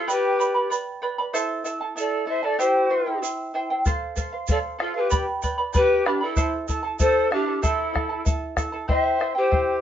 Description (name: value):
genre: andean folk, Andean ensemble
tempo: 95 BPM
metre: 2/4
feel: straight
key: A minor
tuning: A4 = 436 Hz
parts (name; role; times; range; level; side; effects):
- mellow pan flute; melody; 0.0-9.8 s; G4 to E5; -23 LUFS; left 2 dB; none
- breathy bright large quena; second line; 0.0-9.8 s; D4 to C5; -26 LUFS; right 2 dB; none
- charango; accompaniment; 0.0-9.8 s; E4 to B5; -26 LUFS; right 2 dB; none
- egg shaker; percussion; 0.1-8.7 s; none; -36 LUFS; right 8 dB; none
- bombo; percussion; 3.9-9.7 s; none; -25 LUFS; left 1 dB; none
room: moderate small room reverb, RT60 0.5 s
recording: nothing above 7.6 kHz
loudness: -21 LUFS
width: side -10 dB against mid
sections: 0.0-8.9 A section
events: none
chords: 0.1 G; 1.3 Am; 2.6 C; 3.9 F; 5.1 G; 6.4 Am; 8.9 C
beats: | 0.09 0.72 | 1.35 1.98 | 2.60 3.23 | 3.86 4.49 | 5.12 5.75 | 6.38 7.01 | 7.64 8.27 | 8.90 9.53